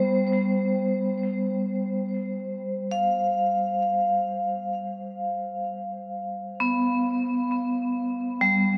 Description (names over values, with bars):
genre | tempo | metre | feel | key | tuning
ambient | free time | none | none | unclear | A4 = 440 Hz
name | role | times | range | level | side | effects
vibraphone with hard mallets | solo | 0.0-8.8 s | G3 to F5 | -26 LUFS | equal | tape echo
room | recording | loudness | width
wet huge ambient reverb, RT60 8.0 s | none | -26 LUFS | mono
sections
0.0-2.2 A section; 2.2-8.8 B section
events
none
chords
0.0 Gadd11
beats
free time